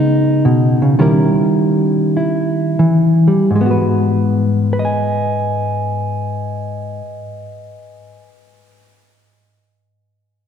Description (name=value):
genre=solo jazz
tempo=83-118 BPM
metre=4/4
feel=swing 69% on 8ths, rubato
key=G# minor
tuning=A4 = 440 Hz
part: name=hollow-body jazz guitar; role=solo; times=0.0-8.3 s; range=G#2 to G#5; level=-13 LUFS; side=equal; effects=none
room=wet church reverb, RT60 3.0 s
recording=recorded in a church or concert hall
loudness=-13 LUFS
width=side -8 dB against mid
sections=0.0-3.5 A section; 3.5-9.2 B section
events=slowing down 0.0-3.5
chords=0.0 C#sus2; 1.0 D#7b9; 3.5 G#m7